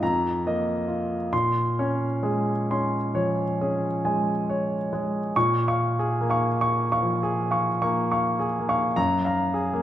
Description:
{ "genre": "classical, impressionist solo piano", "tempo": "44-52 BPM", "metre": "3/4", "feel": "rubato", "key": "Bb minor", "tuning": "A4 = 440 Hz", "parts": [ { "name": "warm baby grand piano", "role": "solo", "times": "0.0-9.8 s", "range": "F2 to Db6", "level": "-22 LUFS", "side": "equal", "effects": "none" } ], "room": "wet recital hall reverb, RT60 1.2 s", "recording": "none", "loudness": "-22 LUFS", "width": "side -12 dB against mid", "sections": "0.0-5.3 A section; 5.3-9.8 B section", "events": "none", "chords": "0.0 F7sus4; 1.3 Bbm9; 5.3 Bbm7; 9.0 Gbmaj9" }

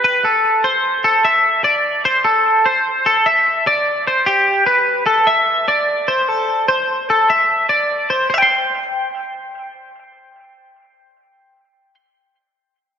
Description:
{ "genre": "rock", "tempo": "149 BPM", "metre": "5/4", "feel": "straight", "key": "C major", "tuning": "A4 = 441 Hz", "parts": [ { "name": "twangy electric guitar", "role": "solo", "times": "0.0-11.9 s", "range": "G4 to C6", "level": "-13 LUFS", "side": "equal", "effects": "analog chorus, analog delay" } ], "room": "wet lush hall reverb, RT60 2.5 s", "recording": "dreamy mix soaked in reverb", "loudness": "-13 LUFS", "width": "side -8 dB against mid", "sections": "0.2-8.3 A section; 8.3-12.3 B section", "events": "none", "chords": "0.2 C6; 4.3 Gadd9; 6.3 Amadd11; 8.3 C5" }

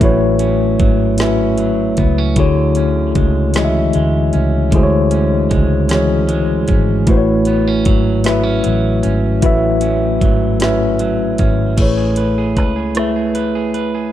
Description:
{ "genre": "slow six-eight R&B", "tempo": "51 BPM (dotted quarters)", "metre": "6/8", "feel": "straight", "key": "A major", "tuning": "A4 = 440 Hz", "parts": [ { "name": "electric guitar at the edge of break-up", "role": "second line", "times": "0.0-14.1 s", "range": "A2 to B4", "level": "-22 LUFS", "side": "right 8 dB", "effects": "none" }, { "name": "mellow tine electric piano", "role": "accompaniment", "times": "0.0-14.1 s", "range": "D3 to E5", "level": "-16 LUFS", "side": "left 2 dB", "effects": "medium stereo tremolo" }, { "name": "vintage muted fingered electric bass", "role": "bass", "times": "0.0-14.1 s", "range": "G#1 to D2", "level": "-18 LUFS", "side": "equal", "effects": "none" }, { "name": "smooth R&B drum kit", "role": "drums", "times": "0.0-13.9 s", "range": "crash cymbal, hi-hat, kick drum, rim click, snare drum", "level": "-17 LUFS", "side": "equal", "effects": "none" } ], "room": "light reverb, digital ambience", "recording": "dark, warm production", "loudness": "-12 LUFS", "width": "side -12 dB against mid", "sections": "0.0-11.8 A section; 11.8-14.1 B section", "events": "none", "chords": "0.0 A6; 2.4 Dmaj9#11; 7.1 A6; 11.8 Amaj9" }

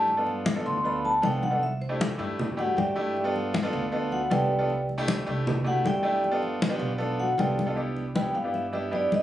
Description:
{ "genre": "Afro-Cuban jazz", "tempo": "156 BPM", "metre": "4/4", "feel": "straight", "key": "C major", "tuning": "A4 = 440 Hz", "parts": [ { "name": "vibraphone with soft mallets", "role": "melody", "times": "0.0-9.2 s", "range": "F#4 to C6", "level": "-26 LUFS", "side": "equal", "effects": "none" }, { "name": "clear grand piano", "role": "accompaniment", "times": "0.0-9.2 s", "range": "A3 to A4", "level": "-30 LUFS", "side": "right 1 dB", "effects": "none" }, { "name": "upright bass", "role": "bass", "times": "0.0-9.2 s", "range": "G1 to G2", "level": "-33 LUFS", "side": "right 1 dB", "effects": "none" }, { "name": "congas", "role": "percussion", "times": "0.1-9.2 s", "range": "none", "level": "-30 LUFS", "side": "left 2 dB", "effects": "none" } ], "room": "moderate studio reverb, RT60 0.9 s", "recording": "recorded on a phone in the room, studio reverb, compression, nothing above 10.9 kHz", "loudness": "-24 LUFS", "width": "side -12 dB against mid", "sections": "0.0-7.8 A section; 7.8-9.2 B section", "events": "vibraphone solo 0.0-7.8", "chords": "0.1 G7; 1.6 C69; 3.2 G7; 4.7 C69; 6.2 G7; 7.8 Cmaj9" }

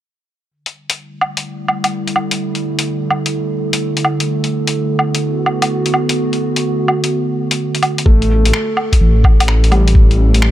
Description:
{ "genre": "future garage", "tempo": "127 BPM", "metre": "4/4", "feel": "swing 66% on 16ths", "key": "unclear", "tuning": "A4 = 440 Hz", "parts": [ { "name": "warbly tape-like pad", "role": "sustained chords", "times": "1.2-8.1 s", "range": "D3 to A4", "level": "-18 LUFS", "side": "right 2 dB", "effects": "chorus, built-in reverb, vintage 12-bit sampler grit, sidechain pumping" }, { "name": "lo-fi sampler-style drum kit", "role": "drums", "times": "0.7-10.5 s", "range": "finger snaps, hi-hat, woodblock", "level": "-18 LUFS", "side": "equal", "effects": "none" }, { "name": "felt-muted upright piano", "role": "accompaniment", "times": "8.1-10.5 s", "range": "G3 to A3", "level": "-20 LUFS", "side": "equal", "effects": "sidechain pumping, tape echo" }, { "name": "swelling detuned saw bass", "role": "bass", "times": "8.1-10.5 s", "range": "A1", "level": "-11 LUFS", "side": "equal", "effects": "sidechain pumping" }, { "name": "electronic kick drum", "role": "drums", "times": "8.1-10.1 s", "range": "none", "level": "-10 LUFS", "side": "equal", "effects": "none" } ], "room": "light reverb, digital ambience", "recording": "none", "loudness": "-13 LUFS", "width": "side -13 dB against mid", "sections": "0.5-8.1 A section; 8.1-10.5 B section", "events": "fade-in on ambient pad 0.5-8.1", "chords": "0.5 A7sus4; 4.3 Bm7; 8.1 A7(no3)" }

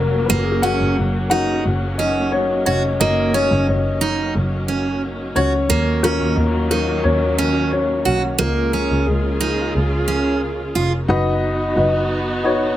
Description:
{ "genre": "piano-driven pop", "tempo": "89 BPM", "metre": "4/4", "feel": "straight", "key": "F# major", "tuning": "A4 = 440 Hz", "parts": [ { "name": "dark upright piano", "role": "accompaniment", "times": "0.0-12.8 s", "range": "F#3 to F#5", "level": "-20 LUFS", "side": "left 3 dB", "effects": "none" }, { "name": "warm studio string section", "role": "sustained chords", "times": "0.0-12.8 s", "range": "C#3 to G#4", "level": "-25 LUFS", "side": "right 1 dB", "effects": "none" }, { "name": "warm double bass", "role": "bass", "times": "0.0-12.7 s", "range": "E#1 to D#2", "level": "-22 LUFS", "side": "equal", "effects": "none" }, { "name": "picked steel-string acoustic guitar", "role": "riff", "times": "0.3-10.9 s", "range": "A#3 to F#4", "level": "-20 LUFS", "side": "right 4 dB", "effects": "none" } ], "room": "light reverb", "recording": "none", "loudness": "-16 LUFS", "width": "side -13 dB against mid", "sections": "0.0-11.1 A section; 11.1-12.8 B section", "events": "upright piano solo 0.0-11.1", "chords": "0.3 F#; 5.7 D#m7; 8.4 C#; 11.1 B/F#" }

